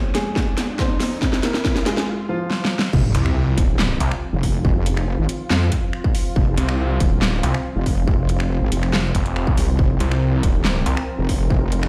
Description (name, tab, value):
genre	heavy wobble dubstep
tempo	140 BPM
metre	4/4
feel	half-time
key	F minor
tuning	A4 = 441 Hz
part	warm grand piano	melody	0.0-2.9 s	F3 to C5	-28 LUFS	equal	delay
part	supersaw pad	sustained chords	0.0-11.9 s	F2 to Bb4	-33 LUFS	equal	sidechain pumping, low-pass filter
part	riser and sub drop	sound effects	0.0-4.6 s	none	-30 LUFS	equal	none
part	dubstep drum kit	drums	0.1-11.9 s	crash cymbal, finger snaps, handclaps, hi-hat, snare drum	-26 LUFS	equal	none
part	electronic kick drum	drums	0.4-11.6 s	none	-23 LUFS	equal	distortion
part	wobble bass	bass	2.9-11.9 s	Eb1 to F2	-22 LUFS	equal	chorus, overdrive
part	snarling distorted saw bass	bass	3.1-11.0 s	F1 to C2	-22 LUFS	equal	distortion, overdrive
room	light reverb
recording	played on a big sound system in a bare room, stone room reverb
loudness	-20 LUFS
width	mono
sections	0.0-2.9 A section; 2.9-11.9 B section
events	build-up 0.0-2.9; drum fill 0.0-2.1, 2.5-2.9; riser 0.0-2.1; break 2.1-2.9; drop 2.9-11.9; impact 2.9-4.6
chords	0.0 Fm; 2.9 F5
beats	0.36 0.79 | 1.22 1.65 2.08 2.50 | 2.93 3.36 3.79 4.22 | 4.65 5.08 5.50 5.93 | 6.36 6.79 7.22 7.65 | 8.08 8.51 8.93 9.36 | 9.79 10.22 10.65 11.08 | 11.51